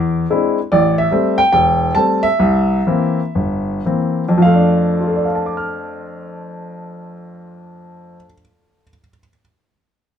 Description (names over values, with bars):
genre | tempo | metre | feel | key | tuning
solo jazz | 104-148 BPM | 4/4 | swing 65% on 8ths | F major | A4 = 440 Hz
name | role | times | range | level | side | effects
warm baby grand piano | solo | 0.0-9.4 s | E1 to F6 | -14 LUFS | equal | none
room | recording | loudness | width
moderate studio ambience, RT60 0.5 s | minimal, uncompressed stereo recording | -13 LUFS | side -8 dB against mid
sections
0.7-4.4 A section; 4.4-9.0 B section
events
slowing down 0.7-4.4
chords
0.0 E7b13; 0.7 Am7; 2.4 C7; 4.4 F6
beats
0.29 | 0.69 1.10 1.52 1.94 | 2.38 2.85 3.33 3.85 | 4.41 4.99 5.57 6.15 | 6.73 7.31 7.89 8.47